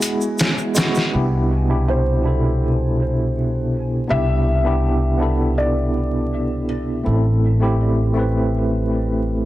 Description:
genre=trip hop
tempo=81 BPM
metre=4/4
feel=straight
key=unclear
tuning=A4 = 441 Hz
part: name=felt-muted upright piano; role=melody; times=0.0-6.6 s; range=C5 to G#5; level=-27 LUFS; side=left 2 dB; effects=vintage 12-bit sampler grit, dub echo
part: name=tine electric piano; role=accompaniment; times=0.0-9.5 s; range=B2 to B4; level=-21 LUFS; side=equal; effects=fast stereo tremolo, tape echo
part: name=trip hop sampler-style drum kit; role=drums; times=0.0-1.1 s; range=hi-hat, snare drum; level=-20 LUFS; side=equal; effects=none
part: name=tube shaker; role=percussion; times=0.0-1.1 s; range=none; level=-29 LUFS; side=right 3 dB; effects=none
part: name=upright bass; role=bass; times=1.1-9.5 s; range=A1 to C2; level=-19 LUFS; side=equal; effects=none
room=light reverb, small room ambience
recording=dense, heavily limited modern master, vinyl crackle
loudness=-17 LUFS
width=side -15 dB against mid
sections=0.0-1.1 A section; 1.1-9.5 B section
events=break 0.0-1.1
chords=0.0 Eadd9; 1.1 Cmaj7; 7.1 Am

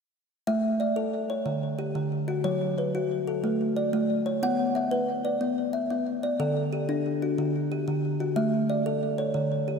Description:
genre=southern african traditional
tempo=122 BPM (dotted quarters)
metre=12/8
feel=straight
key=A mixolydian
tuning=A4 = 440 Hz
part: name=kalimba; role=arpeggios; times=0.5-9.8 s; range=D3 to F#5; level=-25 LUFS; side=equal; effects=ping-pong delay
room=wet lush hall reverb, RT60 3.0 s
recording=dreamy mix soaked in reverb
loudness=-25 LUFS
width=side -5 dB against mid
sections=0.5-9.8 A section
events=none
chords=0.5 A; 1.5 D; 2.5 F#m; 3.4 A; 4.4 Bm; 6.4 D; 8.4 A

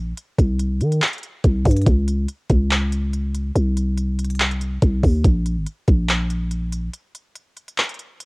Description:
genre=hip hop, trap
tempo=142 BPM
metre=4/4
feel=half-time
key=C phrygian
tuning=A4 = 436 Hz
part: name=growling 808-style bass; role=bass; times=0.0-6.9 s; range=Ab1 to Eb3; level=-20 LUFS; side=equal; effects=none
part: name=trap drum kit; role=drums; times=0.2-8.3 s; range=handclaps, hi-hat, kick drum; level=-19 LUFS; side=equal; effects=cassette tape
room=digital ambience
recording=home recording on cassette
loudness=-18 LUFS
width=side -31 dB against mid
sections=0.0-8.3 A section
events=break 6.9-8.3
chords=none

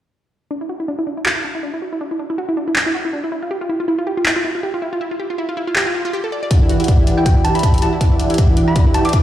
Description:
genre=future bass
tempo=160 BPM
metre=4/4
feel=swing 56% on 16ths, half-time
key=E minor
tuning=A4 = 440 Hz
part: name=wide unison pluck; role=arpeggios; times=0.5-9.2 s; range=D4 to D5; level=-21 LUFS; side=right 1 dB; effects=sidechain pumping, digital delay
part: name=dubstep drum kit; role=drums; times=1.3-9.2 s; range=handclaps, hi-hat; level=-21 LUFS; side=equal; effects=none
part: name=soft supersaw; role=riff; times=6.5-9.2 s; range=E3 to G5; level=-18 LUFS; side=right 1 dB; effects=sidechain pumping, low-pass filter
part: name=electronic kick drum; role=drums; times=6.5-9.2 s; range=none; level=-14 LUFS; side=equal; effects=none
part: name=thumb-piano-like synth pluck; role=melody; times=7.2-9.2 s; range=G5 to D6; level=-22 LUFS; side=equal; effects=chorus, sidechain pumping, dub echo
room=moderate lush hall reverb, RT60 1.8 s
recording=played on a big sound system in a bare room, large studio reverb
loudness=-15 LUFS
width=side -12 dB against mid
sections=0.5-6.5 A section; 6.5-9.2 B section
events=filter sweep on synth arpeggio sound 0.5-6.5; build-up 6.5-9.2; filter sweep on supersaw synth 6.5-9.2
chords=0.5 Esus2; 3.3 Fmaj7sus2; 6.3 N.C.; 6.5 Em9

